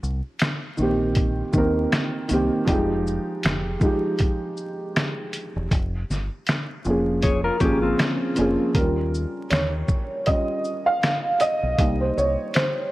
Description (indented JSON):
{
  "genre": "lo-fi hip hop",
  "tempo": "79 BPM",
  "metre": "4/4",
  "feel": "swing 57% on 16ths",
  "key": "unclear",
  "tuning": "A4 = 441 Hz",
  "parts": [
    { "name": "deep dub fingered electric bass", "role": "bass", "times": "0.0-12.3 s", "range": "E1 to Eb2", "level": "-27 LUFS", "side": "equal", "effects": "none" },
    { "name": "lo-fi sampler-style drum kit", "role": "drums", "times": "0.0-12.8 s", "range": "finger snaps, hi-hat, kick drum, shaker, snare drum", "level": "-23 LUFS", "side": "equal", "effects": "none" },
    { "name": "felt-muted upright piano", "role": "accompaniment", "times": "0.8-12.9 s", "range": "Db3 to F5", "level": "-23 LUFS", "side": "right 1 dB", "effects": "low-pass filter" },
    { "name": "mellow electric guitar", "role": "second line", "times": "7.2-8.7 s", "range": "C4 to Db5", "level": "-25 LUFS", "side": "left 3 dB", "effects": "low-pass filter, analog delay" }
  ],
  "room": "light reverb, digital ambience",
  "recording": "vinyl crackle, lossy compression artefacts",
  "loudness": "-20 LUFS",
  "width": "side -17 dB against mid",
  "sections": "0.0-8.8 A section; 8.8-12.9 A section",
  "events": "felt piano solo 8.8-12.9",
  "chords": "0.0 Cm7; 2.7 Fm9; 5.7 Bbm7/F; 8.8 Eb9; 11.8 Cm7"
}